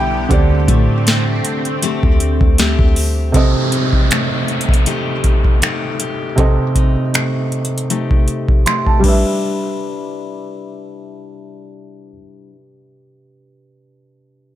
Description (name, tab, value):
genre	contemporary R&B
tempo	79 BPM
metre	4/4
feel	swing 54% on 16ths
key	G major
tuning	A4 = 439 Hz
part	warm baby grand piano	melody	0.0-2.5 s	G5	-25 LUFS	equal	ping-pong delay
part	felt-muted upright piano	accompaniment	0.0-14.6 s	B2 to C6	-20 LUFS	right 4 dB	low-pass filter
part	lush unison pad	sustained chords	0.0-3.3 s	D3 to G4	-24 LUFS	right 2 dB	chorus, phaser
part	picked steel-string acoustic guitar	arpeggios	0.0-12.6 s	B2 to B4	-22 LUFS	left 7 dB	low-pass filter, ping-pong delay
part	warm 808-style bass	bass	0.0-3.3 s	B1 to A2	-16 LUFS	equal	none
part	booming analog drum machine	drums	0.3-9.2 s	crash cymbal, finger snaps, hi-hat, kick drum, snare drum	-15 LUFS	equal	overdrive
part	downlifter	sound effects	3.3-9.4 s	none	-25 LUFS	right 1 dB	none
room	little or no reverb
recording	none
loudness	-13 LUFS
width	side -12 dB against mid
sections	0.0-3.3 A section; 3.3-9.4 B section; 9.4-12.5 C section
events	filter sweep 3.3-9.4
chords	0.3 D7sus4; 3.3 Cm6; 9.0 G6